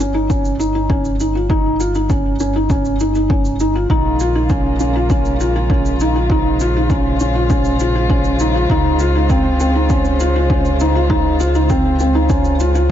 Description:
piano and strings electronica; 100 BPM; 4/4; straight; A4 = 443 Hz
felt-muted upright piano; riff; 0.0-12.9 s; C4 to F4; -17 LUFS; equal; ping-pong delay
round analog bass; bass; 0.0-12.9 s; G1 to Db2; -19 LUFS; equal; sidechain pumping
shaker; drums; 0.0-12.9 s; -34 LUFS; right 3 dB
electronic kick drum; drums; 0.3-12.4 s; -18 LUFS; equal; overdrive
dark string quartet; sustained chords; 3.9-12.9 s; Db3 to C5; -22 LUFS; left 1 dB; sidechain pumping
light reverb, small room ambience; dark, warm production, nothing above 7.5 kHz; -13 LUFS; side -10 dB against mid
0.0-12.9 A section
0.0 Eb7/G; 3.9 Bbm7; 8.7 Dbmaj7
0.30 0.90 | 1.50 2.10 2.70 3.30 | 3.90 4.50 5.10 5.70 | 6.30 6.90 7.50 8.10 | 8.70 9.30 9.90 10.50 | 11.10 11.70 12.30 12.90

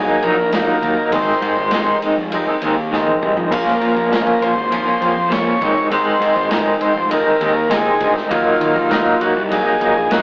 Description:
psychedelic rock; 100 BPM; 4/4; straight; A4 = 441 Hz
combo organ; melody; 0.0-10.2 s; F4 to Db5; -18 LUFS; equal
twangy electric guitar; riff; 0.0-10.2 s; Ab2 to F4; -16 LUFS; equal; tremolo
fuzz picked electric bass; bass; 0.0-10.2 s; F1 to Eb3; -24 LUFS; equal; overdrive
vintage drum kit; drums; 0.2-10.2 s; kick drum, ride cymbal, snare drum, splash cymbal, toms; -25 LUFS; equal
wet small room reverb, RT60 0.5 s; rough rehearsal-room recording, tube saturation, AM radio sound; -14 LUFS; side -29 dB against mid
0.0-10.2 A section
drum fill 2.9-3.5
0.0 Ebm; 1.1 Ab; 3.5 Bbm; 5.6 Ab; 8.3 Ebm
0.53 | 1.12 1.72 2.32 2.92 | 3.51 4.11 4.71 5.31 | 5.91 6.51 7.11 7.71 | 8.31 8.91 9.51 10.11

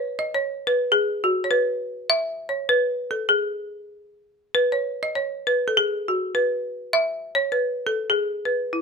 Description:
alpine folk; 100 BPM; 2/4; swing 55% on 8ths; E major; A4 = 440 Hz
folk marimba with hard mallets; solo; 0.0-8.8 s; E4 to E5; -21 LUFS; equal
light reverb; close, detailed microphones; -21 LUFS; side -4 dB against mid
0.0-8.8 A section
0.32 | 0.92 1.52 | 2.12 2.71 | 3.31 3.91 | 4.52 5.12 | 5.72 6.32 | 6.91 7.51 | 8.10 8.70

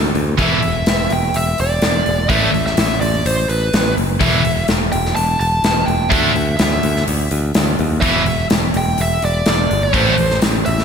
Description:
hard rock; 126 BPM; 4/4; straight; E minor; A4 = 441 Hz
modern bright picked electric bass; bass; 0.0-10.8 s; E1 to D#2; -19 LUFS; equal
big rock drum kit; drums; 0.2-10.8 s; hi-hat, kick drum, snare drum; -18 LUFS; left 1 dB
dark smooth lead guitar; melody; 0.4-10.8 s; B4 to A5; -20 LUFS; right 1 dB; overdrive, slapback echo, digital delay
high-gain distorted guitar; riff; 0.4-10.1 s; E2 to D4; -21 LUFS; right 9 dB; distortion
scooped high-gain guitar; riff; 0.4-10.1 s; E2 to D4; -22 LUFS; left 10 dB; distortion, slapback echo
moderate lush hall reverb, RT60 2.0 s, small room ambience; big arena sound; -14 LUFS; side -7 dB against mid
0.0-10.8 A section
0.4 E5; 2.3 Asus2; 4.2 E5; 6.1 Dsus2; 8.0 E5; 9.9 Am
| 0.39 0.86 1.34 1.82 | 2.29 2.77 3.25 3.73 | 4.20 4.68 5.16 5.63 | 6.11 6.59 7.07 7.55 | 8.03 8.50 8.98 9.46 | 9.94 10.42

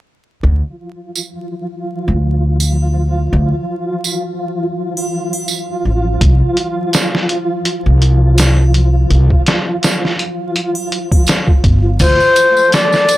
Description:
trip hop; 83 BPM; 4/4; swing 55% on 16ths; D minor; A4 = 438 Hz
upright bass; bass; 0.4-12.2 s; G1 to D2; -12 LUFS; equal
flickering grainy texture; texture; 0.7-13.2 s; F3 to A4; -20 LUFS; right 1 dB; built-in reverb
tambourine and triangle; percussion; 1.2-13.2 s; -22 LUFS; right 5 dB
trip hop sampler-style drum kit; drums; 6.2-13.2 s; crash cymbal, hi-hat, kick drum, snare drum; -14 LUFS; equal
breathy bright concert flute; melody; 12.0-13.2 s; C5 to D5; -9 LUFS; left 2 dB
small room ambience; dry, gritty hardware recording, vinyl crackle; -12 LUFS; side -16 dB against mid
0.4-12.0 A section; 12.0-13.2 B section
0.4 Dm; 6.2 C5; 12.0 D7(no3)
| 0.43 1.15 1.88 2.60 | 3.32 4.05 4.77 5.49 | 6.21 6.94 7.66 8.38 | 9.11 9.83 10.55 11.28 | 12.00 12.72

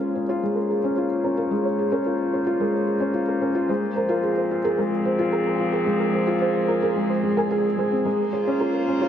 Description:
piano and strings electronica; 110 BPM; 4/4; straight; Bb minor; A4 = 437 Hz
dark string quartet; sustained chords; 0.0-9.1 s; Bb2 to Db5; -28 LUFS; left 1 dB; low-pass filter
soft round pluck; arpeggios; 0.0-9.1 s; Bb4 to Db5; -29 LUFS; right 2 dB; ensemble chorus, tape echo
felt-muted upright piano; riff; 0.0-9.1 s; Ab3 to Ab5; -22 LUFS; equal; tape echo
moderate lush hall reverb, RT60 2.3 s; -20 LUFS; side -9 dB against mid
0.0-9.1 A section
build-up 0.0-9.1; filter sweep on string quartet 0.0-9.1; filter sweep on synth arpeggio sound 0.0-9.1
0.0 Bbm7; 3.7 Fm/Bb; 8.1 Bbm7
0.42 0.97 | 1.51 2.06 2.60 3.15 | 3.69 4.24 4.78 5.33 | 5.88 6.42 6.97 7.51 | 8.06 8.60

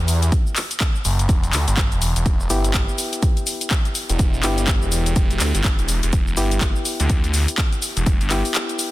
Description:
bass house; 124 BPM; 4/4; swing 60% on 16ths; E minor; A4 = 440 Hz
percussive organ stab; stabs; 0.0-8.9 s; B3 to G4; -28 LUFS; left 2 dB; chorus, sidechain pumping, dub echo
phased detuned saw bass; bass; 0.0-8.4 s; E1 to E2; -20 LUFS; equal; phaser, overdrive, sidechain pumping
house drum kit; drums; 0.1-8.9 s; handclaps, hi-hat, shaker; -23 LUFS; left 1 dB; overdrive, studio reverb
electronic kick drum; drums; 0.3-8.2 s; -19 LUFS; equal; overdrive, studio reverb
little or no reverb; dense, heavily limited modern master; -17 LUFS; side -16 dB against mid
0.0-8.9 A section
0.0 Em
0.32 0.81 | 1.29 1.77 2.26 2.74 | 3.23 3.71 4.19 4.68 | 5.16 5.64 6.13 6.61 | 7.10 7.58 8.06 8.55

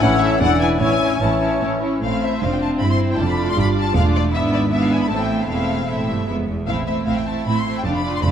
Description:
quick classical-period movement for symphony orchestra; 154 BPM; 3/4; rubato; A minor; A4 = 439 Hz
rich studio violin section; melody; 0.0-8.3 s; D5 to C6; -25 LUFS; left 5 dB
bright clarinet; second line; 0.0-1.8 s; C#5 to D5; -28 LUFS; left 1 dB
bright flute section; second line; 0.0-1.8 s; E6; -27 LUFS; left 5 dB
rich studio violin section; second line; 0.0-8.3 s; D4 to E5; -27 LUFS; left 3 dB
clear bassoon; accompaniment; 0.0-1.8 s; E3; -25 LUFS; right 2 dB
rich studio viola section; accompaniment; 0.0-8.3 s; E3 to F4; -22 LUFS; right 1 dB
dark French horn section; sustained chords; 0.0-1.8 s; E3 to D4; -24 LUFS; left 6 dB
bright studio cello section; bass; 0.0-8.3 s; E2 to A2; -24 LUFS; right 2 dB
warm studio double bass section; bass; 0.0-8.3 s; E1 to A1; -24 LUFS; right 3 dB
wet concert hall reverb, RT60 2.1 s; -17 LUFS; side -9 dB against mid
0.0-2.0 A section; 2.0-8.3 B section
0.0 A; 0.4 E7; 0.8 A; 2.0 Am; 3.2 Dm/F; 4.3 E7/G#; 5.1 Am; 5.5 Am/E; 6.3 E; 6.7 Am
0.03 0.41 | 0.81 1.21 1.62 | 2.02 2.41 2.80 | 3.19 3.57 3.96 | 4.34 4.72 5.10 | 5.49 5.88 6.28 | 6.68 7.07 7.46 | 7.86 8.24

